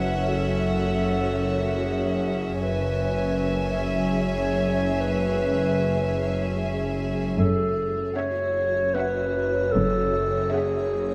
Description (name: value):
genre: cinematic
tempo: 76 BPM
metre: 3/4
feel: straight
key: F# minor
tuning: A4 = 439 Hz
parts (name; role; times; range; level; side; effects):
- warm symphonic violin section; melody; 0.0-11.1 s; F#5 to G#5; -38 LUFS; equal; none
- dark clarinet; second line; 0.0-11.1 s; G#4 to C#5; -29 LUFS; equal; none
- warm chamber violin section; second line; 0.0-11.1 s; E5; -35 LUFS; equal; none
- warm chamber viola section; accompaniment; 0.0-11.1 s; C#4; -36 LUFS; equal; none
- granular cloud pad; sustained chords; 0.0-11.1 s; F#4 to E5; -35 LUFS; equal; built-in reverb
- clear chamber double bass section; bass; 0.0-10.4 s; F#1; -33 LUFS; equal; none
- dark studio cello section; bass; 0.0-10.4 s; F#2; -31 LUFS; equal; none
- bowed-like drone; drone; 0.2-11.1 s; F#1; -34 LUFS; equal; built-in reverb
room: moderate scoring stage reverb, RT60 1.9 s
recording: none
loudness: -24 LUFS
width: mono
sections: 0.0-11.1 A section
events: none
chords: 0.0 F#m7; 2.6 C#m7/F#; 7.4 F#m7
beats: | 0.27 1.06 1.85 | 2.64 3.43 4.22 | 5.01 5.80 6.59 | 7.38 8.17 8.96 | 9.75 10.54